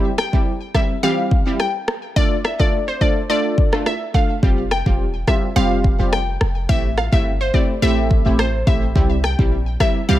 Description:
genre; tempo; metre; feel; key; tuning
dancehall; 106 BPM; 4/4; straight; F major; A4 = 442 Hz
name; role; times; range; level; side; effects
synth brass stab; accompaniment; 0.0-10.2 s; E3 to A4; -22 LUFS; right 1 dB; chorus, sidechain pumping
glassy wavetable pluck; melody; 0.2-10.2 s; C5 to G5; -23 LUFS; left 1 dB; chorus, digital delay
afro-pop drum kit; drums; 0.2-9.9 s; kick drum, rim click; -18 LUFS; equal; none
clean 808-style bass; bass; 4.4-10.2 s; E1 to C2; -20 LUFS; equal; none
room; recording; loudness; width
little or no reverb; none; -16 LUFS; side -14 dB against mid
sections
0.0-10.2 A section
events
none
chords
0.0 C; 2.2 Dm; 4.4 Fsus2; 6.7 Am7; 9.0 C

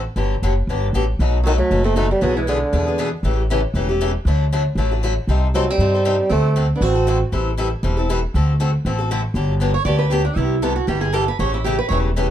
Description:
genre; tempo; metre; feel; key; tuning
acoustic string swing (jazz manouche); 235 BPM; 4/4; swing 55% on 8ths; G major; A4 = 436 Hz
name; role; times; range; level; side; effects
upright bass; bass; 0.0-12.3 s; E1 to G2; -19 LUFS; equal; none
picked steel-string acoustic guitar; accompaniment; 0.2-12.3 s; B2 to C5; -23 LUFS; left 3 dB; none
picked steel-string acoustic guitar; second line; 1.4-3.1, 5.5-7.2, 9.7-12.0 s; F#3 to D5; -24 LUFS; right 6 dB; none
mellow bassoon; melody; 1.5-3.1, 5.5-7.2 s; D3 to C4; -20 LUFS; right 1 dB; none
room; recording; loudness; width
light reverb; dark, warm production; -16 LUFS; side -11 dB against mid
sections
0.0-1.2 A section; 1.2-9.4 B section; 9.4-12.3 C section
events
steel-string acoustic guitar solo 9.4-12.3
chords
0.2 Gmaj7; 1.2 B7; 2.2 E7/B; 3.2 A7; 4.3 D; 5.3 Cm6; 6.3 D7; 7.3 Am7; 8.3 D7; 9.4 Gmaj7; 10.4 Cmaj7; 11.4 A7

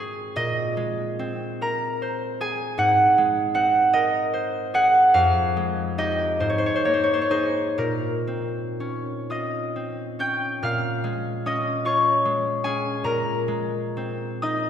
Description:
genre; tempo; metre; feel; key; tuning
classical, solo harp piece; 38-53 BPM (dotted quarters); 6/8; rubato; Bb minor; A4 = 441 Hz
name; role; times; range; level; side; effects
concert harp; solo; 0.0-14.7 s; F2 to G6; -21 LUFS; equal; none
room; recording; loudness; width
wet scoring stage reverb, RT60 1.6 s; recorded in a church or concert hall; -21 LUFS; side -8 dB against mid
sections
0.0-10.6 A section; 10.6-14.7 A section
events
none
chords
0.4 Bb9sus4; 2.8 Ab9; 5.1 Fm9; 6.4 Abadd9; 7.8 Bbmadd9; 10.6 Bbm7; 13.0 Abadd9/Bb

